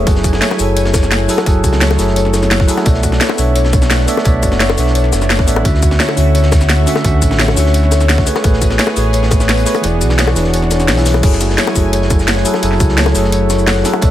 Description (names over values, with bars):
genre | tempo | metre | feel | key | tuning
liquid drum and bass | 172 BPM | 4/4 | straight | F# minor | A4 = 440 Hz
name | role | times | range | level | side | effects
bell-like tine electric piano | accompaniment | 0.0-14.1 s | D3 to E5 | -17 LUFS | right 2 dB | vintage 12-bit sampler grit, ping-pong delay
lush unison pad | sustained chords | 0.0-14.1 s | A3 to G#5 | -23 LUFS | right 2 dB | chorus
concert harp | arpeggios | 0.0-14.1 s | C#4 to F#5 | -21 LUFS | left 8 dB | ping-pong delay
sub bass with octave | bass | 0.0-14.1 s | E1 to D2 | -15 LUFS | equal | none
crunchy breakbeat drum kit | drums | 0.1-14.1 s | hi-hat, snare drum | -26 LUFS | right 1 dB | high-pass filter on hats, high-pass filter on snare, high-pass filter on room
drum and bass drum kit | drums | 0.1-14.1 s | crash cymbal, hi-hat, shaker, snare drum | -18 LUFS | equal | overdrive
electronic kick drum | drums | 0.1-14.1 s | none | -14 LUFS | equal | overdrive
bongos | percussion | 0.5-14.0 s | none | -20 LUFS | left 6 dB | none
room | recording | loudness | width
studio reverb | none | -10 LUFS | side -12 dB against mid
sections
0.0-11.2 A section; 11.2-14.1 A section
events
drop 0.0-11.2, 11.2-14.1; kick drops out 9.8-11.2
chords
0.1 F#m9; 2.9 Bm11; 5.7 Dmaj9; 8.3 Amaj9; 9.8 E7; 11.2 F#m9